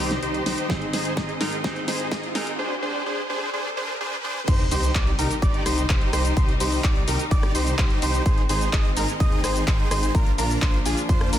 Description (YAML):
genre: EDM, festival progressive house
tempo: 127 BPM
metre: 4/4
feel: straight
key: C minor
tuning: A4 = 435 Hz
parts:
  - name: clean electric guitar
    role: accompaniment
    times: 0.0-2.6 s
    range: Ab2 to Eb4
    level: -33 LUFS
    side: right 2 dB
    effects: sidechain pumping, dub echo
  - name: clear studio string section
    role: sustained chords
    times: 0.0-11.4 s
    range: C3 to C6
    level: -34 LUFS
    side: left 2 dB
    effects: sidechain pumping
  - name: dense compressed supersaw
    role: riff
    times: 0.0-11.4 s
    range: D4 to Eb5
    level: -26 LUFS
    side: right 1 dB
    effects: sidechain pumping, low-pass filter, dub echo
  - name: detuned saw bass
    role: bass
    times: 0.0-11.4 s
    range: G1 to F2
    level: -28 LUFS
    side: equal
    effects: sidechain pumping
  - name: riser and sub drop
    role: sound effects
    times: 0.4-6.4 s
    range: none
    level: -34 LUFS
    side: equal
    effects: none
  - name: big-room dance drum kit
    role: drums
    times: 0.1-11.4 s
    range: cabasa, crash cymbal, handclaps, hi-hat, rim click, snare drum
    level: -29 LUFS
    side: left 1 dB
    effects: none
  - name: electronic kick drum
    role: drums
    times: 0.7-11.2 s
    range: none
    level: -22 LUFS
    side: equal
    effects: none
  - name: warm baby grand piano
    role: arpeggios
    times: 4.5-11.4 s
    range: Ab5 to Eb6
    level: -31 LUFS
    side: right 2 dB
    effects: sidechain pumping, dub echo
room: light reverb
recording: dense, heavily limited modern master, high-pass filter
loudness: -20 LUFS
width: side -11 dB against mid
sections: 0.0-4.5 A section; 4.5-11.4 B section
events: build-up 0.0-4.5; drum fill 0.0-2.6; filter sweep on supersaw synth 0.0-4.5; riser 0.4-4.5; drop 4.5-11.4; impact 4.5-6.4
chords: 0.0 Cm; 0.7 Ab; 4.5 Cm; 8.3 Ab; 10.1 Bb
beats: 0.23 | 0.70 1.17 1.64 2.12 | 2.59 3.06 3.53 4.00 | 4.48 4.95 5.42 5.89 | 6.37 6.84 7.31 7.79 | 8.26 8.73 9.20 9.68 | 10.15 10.62 11.09